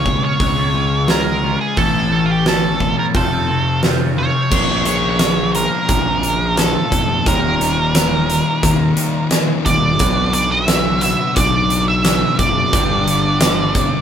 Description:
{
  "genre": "quiet-loud alternative rock",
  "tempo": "88 BPM",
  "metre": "4/4",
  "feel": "straight",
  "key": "unclear",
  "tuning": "A4 = 440 Hz",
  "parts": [
    { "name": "octave-fuzz lead guitar", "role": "melody", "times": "0.0-14.0 s", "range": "F4 to E5", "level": "-19 LUFS", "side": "right 2 dB", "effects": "distortion" },
    { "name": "twangy electric guitar", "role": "arpeggios", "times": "0.0-14.0 s", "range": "Eb2 to A4", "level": "-27 LUFS", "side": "right 7 dB", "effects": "phaser" },
    { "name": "thick fuzz guitar", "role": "riff", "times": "0.0-14.0 s", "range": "Eb2 to B4", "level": "-20 LUFS", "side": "left 4 dB", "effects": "distortion" },
    { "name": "fuzz picked electric bass", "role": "bass", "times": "0.0-13.9 s", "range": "Eb1 to Eb2", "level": "-22 LUFS", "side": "equal", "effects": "overdrive" },
    { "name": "huge arena drum kit", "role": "drums", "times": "0.1-13.9 s", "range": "crash cymbal, hi-hat, kick drum, snare drum", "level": "-18 LUFS", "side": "right 1 dB", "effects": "none" }
  ],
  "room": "light reverb",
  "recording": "band playing live in one room",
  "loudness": "-13 LUFS",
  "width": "side -8 dB against mid",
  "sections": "0.0-4.5 A section; 4.5-14.0 B section",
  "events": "none",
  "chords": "0.0 C#; 1.8 A; 3.1 F; 4.5 Bbm; 7.3 Eb; 10.0 Bm; 12.7 G",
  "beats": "0.40 1.09 | 1.78 2.46 3.15 3.83 | 4.52 5.21 5.89 6.58 | 7.26 7.94 8.63 9.31 | 9.99 10.68 11.36 12.04 | 12.73 13.41"
}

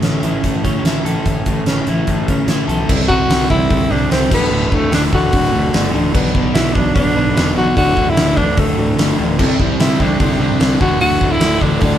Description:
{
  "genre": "classic rock",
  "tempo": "148 BPM",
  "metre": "4/4",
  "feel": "straight",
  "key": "D major",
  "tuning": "A4 = 440 Hz",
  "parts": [
    { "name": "overdriven semi-hollow guitar", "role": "riff", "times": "0.0-12.0 s", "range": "D2 to A4", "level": "-19 LUFS", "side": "equal", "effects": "none" },
    { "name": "fuzz picked electric bass", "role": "bass", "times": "0.0-12.0 s", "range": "D1 to A2", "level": "-21 LUFS", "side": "equal", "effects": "overdrive" },
    { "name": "huge arena drum kit", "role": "drums", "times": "0.0-11.9 s", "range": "crash cymbal, hi-hat, kick drum, snare drum", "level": "-17 LUFS", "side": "equal", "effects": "none" },
    { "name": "warm grand piano", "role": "accompaniment", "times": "2.9-12.0 s", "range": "C4 to B4", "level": "-26 LUFS", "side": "left 4 dB", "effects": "none" },
    { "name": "raspy tenor saxophone", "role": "melody", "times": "3.1-12.0 s", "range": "A3 to F#4", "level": "-18 LUFS", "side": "equal", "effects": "none" },
    { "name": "biting overdriven guitar", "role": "riff", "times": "9.4-12.0 s", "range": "D2 to C4", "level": "-24 LUFS", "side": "equal", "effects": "phaser" }
  ],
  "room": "moderate stone room reverb, RT60 1.0 s",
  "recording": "band playing live in one room",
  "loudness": "-13 LUFS",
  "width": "side -10 dB against mid",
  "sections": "0.0-2.9 A section; 2.9-12.0 B section",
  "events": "none",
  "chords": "0.0 A; 2.9 C6; 4.3 D; 6.1 Bm; 7.8 D; 9.4 C6; 10.8 D",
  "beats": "0.04 0.45 0.85 | 1.26 1.67 2.08 2.49 | 2.90 3.30 3.71 4.12 | 4.52 4.93 5.33 5.74 | 6.15 6.55 6.96 7.36 | 7.77 8.17 8.58 8.98 | 9.39 9.80 10.20 10.61 | 11.01 11.42 11.82"
}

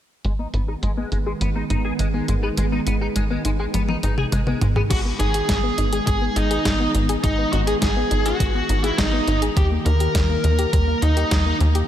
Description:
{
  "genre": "synthwave",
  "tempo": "103 BPM",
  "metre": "4/4",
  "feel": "straight",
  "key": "G# minor",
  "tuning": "A4 = 440 Hz",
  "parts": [
    { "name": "warm analog pad", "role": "sustained chords", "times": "0.2-11.9 s", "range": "D#3 to B3", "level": "-28 LUFS", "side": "right 2 dB", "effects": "chorus, phaser, sidechain pumping" },
    { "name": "soft round pluck", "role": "arpeggios", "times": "0.2-11.8 s", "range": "G3 to G#4", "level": "-28 LUFS", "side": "left 4 dB", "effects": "chorus, ping-pong delay, slapback echo" },
    { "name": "clean electric guitar", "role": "riff", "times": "0.2-4.8 s", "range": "G#3 to G#4", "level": "-32 LUFS", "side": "left 2 dB", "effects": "ensemble chorus, low-pass filter, ping-pong delay, slapback echo" },
    { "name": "tight sequencer bass", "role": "bass", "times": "0.2-11.8 s", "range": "G#1 to D#2", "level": "-21 LUFS", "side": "equal", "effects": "none" },
    { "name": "detuned 8-bit digital drum machine", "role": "drums", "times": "0.2-11.9 s", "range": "crash cymbal, hi-hat, snare drum, toms", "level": "-26 LUFS", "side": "equal", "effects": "low-pass filter on hats, studio reverb, low-pass filter on toms, low-pass filter on cymbals, low-pass filter on snare" },
    { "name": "bluesy overdriven lead guitar", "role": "melody", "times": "4.9-11.6 s", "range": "D#4 to A#4", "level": "-23 LUFS", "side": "equal", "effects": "distortion, ping-pong delay, slapback echo" },
    { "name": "electronic kick drum", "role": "drums", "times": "4.9-11.4 s", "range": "none", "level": "-24 LUFS", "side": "equal", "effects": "studio reverb" }
  ],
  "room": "moderate lush hall reverb, RT60 2.7 s",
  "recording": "big arena sound",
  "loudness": "-18 LUFS",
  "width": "side -11 dB against mid",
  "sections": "0.2-4.9 A section; 4.9-11.9 B section",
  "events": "filter sweep on drum 0.2-4.9; filter sweep on analog synth bass 0.2-4.9; filter sweep on synth arpeggio sound 0.2-4.9; filter sweep on clean electric guitar 0.2-4.9; drum fill 3.7-4.9",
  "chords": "0.2 G#m; 9.6 D#",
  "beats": "| 0.25 0.83 1.41 1.99 | 2.58 3.16 3.74 4.32 | 4.91 5.49 6.07 6.65 | 7.24 7.82 8.40 8.98 | 9.57 10.15 10.73 11.31"
}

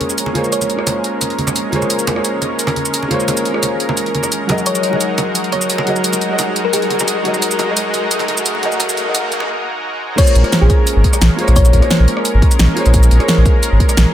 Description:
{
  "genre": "liquid drum and bass",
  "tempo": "174 BPM",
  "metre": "4/4",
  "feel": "straight",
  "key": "Bb minor",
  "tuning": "A4 = 442 Hz",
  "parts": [
    { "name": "warm concert grand piano", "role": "accompaniment", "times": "0.0-14.1 s", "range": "Gb3 to Eb5", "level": "-20 LUFS", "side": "equal", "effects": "dub echo" },
    { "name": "lush unison pad", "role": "sustained chords", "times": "0.0-14.1 s", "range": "Ab3 to Bb4", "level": "-21 LUFS", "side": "equal", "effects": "chorus" },
    { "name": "pop drum kit", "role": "drums", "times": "0.0-14.0 s", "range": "crash cymbal, hi-hat, rim click, shaker, snare drum", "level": "-19 LUFS", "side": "right 1 dB", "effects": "high-pass filter on hats, high-pass filter on snare, high-pass filter on perc, high-pass filter on cymbals, high-pass filter on room" },
    { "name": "congas", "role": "percussion", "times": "0.0-9.5 s", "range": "none", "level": "-24 LUFS", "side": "right 2 dB", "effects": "none" },
    { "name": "riser", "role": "sound effects", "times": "2.3-9.5 s", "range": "none", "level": "-28 LUFS", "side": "equal", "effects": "none" },
    { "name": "warm sub bass", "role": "bass", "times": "0.2-14.1 s", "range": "Eb1 to Bb1", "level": "-11 LUFS", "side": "equal", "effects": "tube saturation, high-pass filter" },
    { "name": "thumb-piano-like synth pluck", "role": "melody", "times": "0.5-1.0, 4.7-7.2, 10.2-12.0 s", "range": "Ab4 to Db5", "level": "-22 LUFS", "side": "left 3 dB", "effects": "chorus, vintage 12-bit sampler grit, ping-pong delay" },
    { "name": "electronic kick drum", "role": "drums", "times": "10.2-13.9 s", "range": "none", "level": "-13 LUFS", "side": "equal", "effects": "none" }
  ],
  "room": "light reverb, digital ambience",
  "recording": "high-pass filter",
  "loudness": "-12 LUFS",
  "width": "side -11 dB against mid",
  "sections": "0.0-10.2 A section; 10.2-14.1 B section",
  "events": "build-up 0.0-10.2; riser 2.3-9.5; break 9.5-10.2; drop 10.2-14.1",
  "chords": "0.0 Bbm9; 4.5 Gb69; 10.0 Bbm9",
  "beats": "0.18 | 0.53 0.87 1.22 1.56 | 1.90 2.25 2.59 2.94 | 3.28 3.63 3.97 4.32 | 4.66 5.01 5.35 5.70 | 6.04 6.39 6.73 7.08 | 7.42 7.77 8.11 8.46 | 8.80 9.15 9.49 9.84 | 10.18 10.53 10.87 11.21 | 11.56 11.90 12.25 12.59 | 12.94 13.28 13.63 13.97"
}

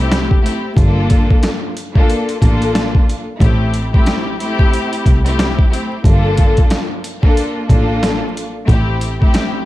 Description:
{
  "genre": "hip hop, boom-bap hip-hop",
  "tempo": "91 BPM",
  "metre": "4/4",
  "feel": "swing 59% on 16ths",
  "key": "unclear",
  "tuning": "A4 = 439 Hz",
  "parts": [
    { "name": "clear studio string section", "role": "accompaniment", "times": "0.0-9.6 s", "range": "A3 to A4", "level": "-18 LUFS", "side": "left 1 dB", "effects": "high-pass filter, low-pass filter" },
    { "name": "rich double bass", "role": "bass", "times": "0.0-9.1 s", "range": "G1 to C2", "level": "-17 LUFS", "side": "equal", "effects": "none" },
    { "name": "boom bap sampler-style drum kit", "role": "drums", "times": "0.1-9.5 s", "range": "hi-hat, kick drum, snare drum", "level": "-14 LUFS", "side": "equal", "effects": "overdrive" }
  ],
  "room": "studio ambience",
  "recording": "dark, warm production, vinyl crackle",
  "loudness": "-12 LUFS",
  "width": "side -16 dB against mid",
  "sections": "0.0-9.7 A section",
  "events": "none",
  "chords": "0.0 Am7; 0.8 Gm7; 3.4 Am7; 6.0 Gm7; 8.7 Am7",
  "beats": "0.11 | 0.77 1.43 2.09 2.75 | 3.41 4.07 4.73 5.39 | 6.04 6.71 7.36 8.02 | 8.68 9.34"
}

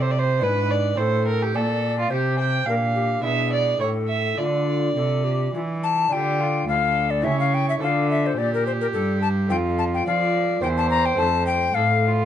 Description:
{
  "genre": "classical, baroque-style sonata movement with continuo",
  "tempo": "106 BPM",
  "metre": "3/4",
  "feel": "straight",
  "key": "D minor",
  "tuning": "A4 = 440 Hz",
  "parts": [
    { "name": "mellow tenor recorder", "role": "melody", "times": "0.0-12.1 s", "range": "F4 to Bb5", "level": "-24 LUFS", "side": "left 6 dB", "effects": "none" },
    { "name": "dark violin", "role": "second line", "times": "0.0-12.2 s", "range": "F4 to G5", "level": "-25 LUFS", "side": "right 5 dB", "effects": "none" },
    { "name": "lute", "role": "accompaniment", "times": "0.0-12.2 s", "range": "D2 to Bb4", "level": "-29 LUFS", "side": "left 2 dB", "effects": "none" },
    { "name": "rich cello", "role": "bass", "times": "0.0-12.2 s", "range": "D2 to F3", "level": "-24 LUFS", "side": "right 1 dB", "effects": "none" }
  ],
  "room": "moderate studio reverb, RT60 0.5 s",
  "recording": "nothing above 10.8 kHz",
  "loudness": "-19 LUFS",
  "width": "side -10 dB against mid",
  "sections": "0.0-6.1 A section; 6.1-12.2 A section",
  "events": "none",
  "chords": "0.4 E7/G#; 1.0 Am; 2.7 Gm/Bb; 3.2 E7/B; 3.8 A7(no3); 4.4 Dm; 7.3 A7/C#; 7.8 Dm; 9.5 F; 10.6 C7/E; 11.2 F",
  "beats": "0.42 | 0.99 1.55 2.12 | 2.68 3.25 3.82 | 4.39 4.97 5.54 | 6.12 6.69 7.25 | 7.82 8.39 8.95 | 9.52 10.08 10.64 | 11.20 11.76"
}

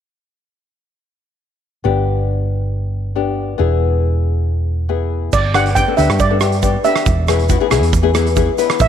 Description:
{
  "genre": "calypso",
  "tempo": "138 BPM",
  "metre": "4/4",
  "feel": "straight",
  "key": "G major",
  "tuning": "A4 = 439 Hz",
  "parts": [
    { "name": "nylon-string guitar", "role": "accompaniment", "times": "1.8-8.8 s", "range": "B3 to B4", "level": "-19 LUFS", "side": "left 9 dB", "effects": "none" },
    { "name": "hollow-body short-scale fingered electric bass", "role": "bass", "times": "1.9-8.9 s", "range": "E1 to G2", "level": "-17 LUFS", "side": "equal", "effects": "none" },
    { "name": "steel pan", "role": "melody", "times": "5.3-8.9 s", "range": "D5 to G5", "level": "-18 LUFS", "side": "right 5 dB", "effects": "tape echo" },
    { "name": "loose indie drum kit", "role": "drums", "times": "5.3-8.9 s", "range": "crash cymbal, hi-hat, kick drum, rim click", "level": "-18 LUFS", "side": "right 3 dB", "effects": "none" },
    { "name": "egg shaker", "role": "percussion", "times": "5.3-8.9 s", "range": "none", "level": "-33 LUFS", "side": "right 15 dB", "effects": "none" }
  ],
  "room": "light reverb, small room ambience",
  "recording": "1960s-style stereo with parts hard left and right",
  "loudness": "-14 LUFS",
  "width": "side -9 dB against mid",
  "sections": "1.9-5.3 A section; 5.3-8.9 B section",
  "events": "none",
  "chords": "1.9 G; 3.6 E; 5.3 G; 7.1 E",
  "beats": "| 1.85 2.29 2.72 3.16 | 3.59 4.03 4.46 4.90 | 5.33 5.76 6.20 6.63 | 7.07 7.50 7.93 8.37 | 8.80"
}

